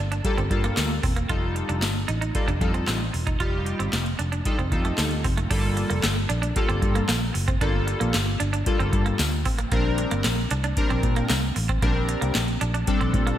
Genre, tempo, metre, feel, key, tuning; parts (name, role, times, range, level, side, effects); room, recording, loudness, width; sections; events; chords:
early-eighties boogie funk; 114 BPM; 4/4; straight; A4 = 440 Hz
clean electric guitar; riff; 0.0-13.4 s; A3 to F4; -31 LUFS; right 5 dB; lush chorus, slapback echo
vintage muted fingered electric bass; bass; 0.0-13.4 s; E1 to Bb2; -26 LUFS; equal
booming analog drum machine; drums; 0.1-13.4 s; crash cymbal, handclaps, hi-hat, kick drum, snare drum; -26 LUFS; equal; overdrive
chorused polysynth; accompaniment; 0.2-13.4 s; G3 to Bb4; -28 LUFS; left 2 dB; slapback echo
tambourine; percussion; 0.8-12.5 s; -38 LUFS; left 4 dB
moderate concert hall reverb, RT60 2.0 s; big arena sound; -21 LUFS; side -11 dB against mid
0.0-5.5 A section; 5.5-13.4 B section
0.0 Gm9; 1.3 F9; 5.5 Gm9; 9.7 Bb69